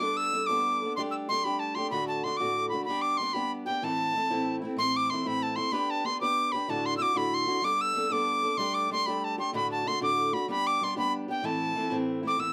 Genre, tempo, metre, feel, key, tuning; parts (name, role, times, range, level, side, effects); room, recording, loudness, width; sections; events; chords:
celtic folk; 126 BPM (dotted quarters); 6/8; straight; A4 = 440 Hz
bright reedy wooden whistle; melody; 0.0-12.5 s; G5 to E6; -30 LUFS; equal
fingerpicked steel-string acoustic guitar; accompaniment; 0.0-12.5 s; D2 to B4; -34 LUFS; equal
moderate studio reverb, RT60 0.5 s; -29 LUFS; mono
0.0-4.8 A section; 4.8-12.4 A section
0.0 Gadd9; 1.0 Gsus2; 1.9 D; 2.9 G; 3.8 Am; 5.7 G/B; 6.7 Dadd9; 7.6 Gadd9; 8.6 Gsus2; 9.5 D; 10.5 G; 11.4 Am